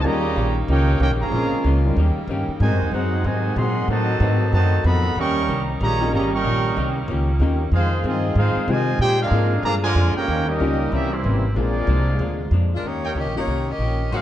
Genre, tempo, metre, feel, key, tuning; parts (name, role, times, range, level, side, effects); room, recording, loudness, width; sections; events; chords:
jazz; 188 BPM; 4/4; swing 64% on 8ths; Eb major; A4 = 438 Hz
warm trumpet section; melody; 0.0-12.5 s; Bb3 to Db6; -25 LUFS; right 1 dB
dark trombone section; second line; 0.0-12.5 s; C3 to A4; -26 LUFS; right 3 dB
archtop guitar, miked and amplified; accompaniment; 0.0-14.2 s; F2 to G4; -28 LUFS; left 3 dB
warm upright piano; accompaniment; 0.0-14.2 s; G3 to Cb5; -28 LUFS; left 4 dB
clear saxophone section; sustained chords; 0.0-12.8 s; Bb2 to A4; -32 LUFS; left 1 dB
upright bass; bass; 0.0-14.2 s; G1 to C3; -21 LUFS; equal
clear saxophone section; melody; 12.7-14.2 s; Ab3 to F5; -26 LUFS; left 2 dB
clear trumpet section; stabs; 13.0-14.2 s; Eb4 to G5; -31 LUFS; right 2 dB
moderate large studio reverb, RT60 1.4 s; dark, warm production; -18 LUFS; side -12 dB against mid
0.0-12.8 A section; 12.8-14.2 B section
0.0 Eb7; 1.3 Bbm7; 2.0 Eb7; 2.6 Ab7; 3.9 Adim7; 5.2 Eb7; 7.7 Fm7; 9.0 Bb7; 10.3 Eb7; 10.9 C7b9; 11.6 Bb7; 12.8 Eb7